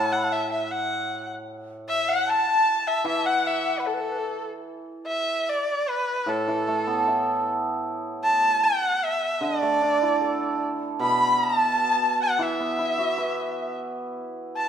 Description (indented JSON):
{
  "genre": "chinese traditional, Chinese chamber ensemble",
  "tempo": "76 BPM",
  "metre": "2/4",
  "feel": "rubato",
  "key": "A zhi mode",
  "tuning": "A4 = 439 Hz",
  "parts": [
    { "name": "rich erhu", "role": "melody", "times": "0.0-14.7 s", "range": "A4 to B5", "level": "-24 LUFS", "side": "equal", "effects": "none" },
    { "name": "large dizi", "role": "second line", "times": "0.0-4.5, 11.0-14.7 s", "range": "A4 to B5", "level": "-27 LUFS", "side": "left 4 dB", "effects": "none" },
    { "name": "hammered dulcimer", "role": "accompaniment", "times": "0.0-14.7 s", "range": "A2 to B4", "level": "-28 LUFS", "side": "right 2 dB", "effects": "none" }
  ],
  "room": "wet recital hall reverb, RT60 1.6 s",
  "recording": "none",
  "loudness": "-22 LUFS",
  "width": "side -8 dB against mid",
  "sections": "0.0-4.7 A section; 4.7-14.7 B section",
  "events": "none",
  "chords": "none",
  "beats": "0.70 | 1.49 2.27 | 3.06 3.87 | 4.68 5.49 | 6.29 7.07 | 7.85 8.64 | 9.42 10.22 | 11.02 11.82 | 12.61 13.38 | 14.16"
}